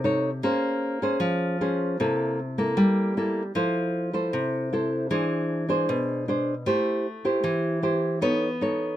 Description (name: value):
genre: bossa nova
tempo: 154 BPM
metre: 4/4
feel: straight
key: F major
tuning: A4 = 440 Hz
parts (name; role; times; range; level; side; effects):
- nylon-string guitar; solo; 0.0-9.0 s; B2 to Db5; -23 LUFS; equal; none
room: light reverb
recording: close, detailed microphones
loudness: -23 LUFS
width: side -12 dB against mid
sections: 0.0-9.0 A section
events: none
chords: 0.4 Bbm9; 2.0 C6; 3.6 Fmaj7; 5.1 E7b13; 6.7 Am7; 8.2 B9